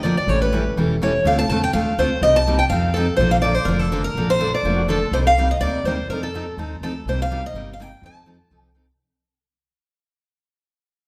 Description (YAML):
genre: acoustic string swing (jazz manouche)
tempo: 249 BPM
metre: 4/4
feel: swing 55% on 8ths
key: unclear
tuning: A4 = 438 Hz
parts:
  - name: picked steel-string acoustic guitar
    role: melody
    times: 0.0-8.9 s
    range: A4 to A5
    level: -23 LUFS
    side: equal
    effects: none
  - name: picked steel-string acoustic guitar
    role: accompaniment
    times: 0.0-8.8 s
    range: C3 to A4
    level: -26 LUFS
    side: equal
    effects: none
  - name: upright bass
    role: bass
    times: 0.0-8.9 s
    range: E1 to F2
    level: -26 LUFS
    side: equal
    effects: none
  - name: warm violin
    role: second line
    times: 4.8-5.1 s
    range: Gb4 to A4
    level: -32 LUFS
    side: equal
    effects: none
room: wet scoring stage reverb, RT60 1.5 s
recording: recorded in a church or concert hall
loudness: -20 LUFS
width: mono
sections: 0.0-5.1 A section; 5.1-9.0 B section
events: fade-out 5.1-9.0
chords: 0.3 A7; 1.3 Dm7; 2.2 Cm7; 2.7 F7; 3.2 Bbmaj9; 5.1 Cm7; 6.1 F7; 7.0 Cm7; 8.0 F7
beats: 0.05 | 0.29 0.53 0.77 1.01 | 1.26 1.50 1.74 1.98 | 2.22 2.46 2.71 2.95 | 3.19 3.43 3.67 3.91 | 4.15 4.40 4.64 4.88 | 5.12 5.36 5.60 5.84 | 6.08 6.33 6.57 6.81 | 7.05 7.29 7.53 7.77 | 8.01 8.26 8.50 8.74